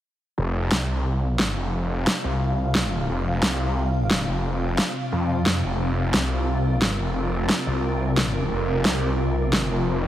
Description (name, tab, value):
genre	dark technical drum and bass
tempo	177 BPM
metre	4/4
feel	straight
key	unclear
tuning	A4 = 440 Hz
part	swarming drone	sustained chords	1.0-10.1 s	C3 to F5	-27 LUFS	equal	built-in reverb
part	snarling distorted saw bass	bass	0.4-10.1 s	F1 to F2	-24 LUFS	equal	overdrive
part	electronic snare drum	drums	0.7-9.6 s	none	-25 LUFS	equal	none
room	moderate lush hall reverb, RT60 1.9 s, digital ambience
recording	heavily compressed radio sound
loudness	-21 LUFS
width	side -12 dB against mid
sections	0.4-10.1 A section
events	none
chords	0.4 F5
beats	| 0.38 0.72 1.05 1.39 | 1.73 2.07 2.41 2.75 | 3.09 3.43 3.77 4.11 | 4.45 4.78 5.12 5.46 | 5.80 6.14 6.48 6.82 | 7.16 7.50 7.83 8.17 | 8.51 8.85 9.19 9.53 | 9.87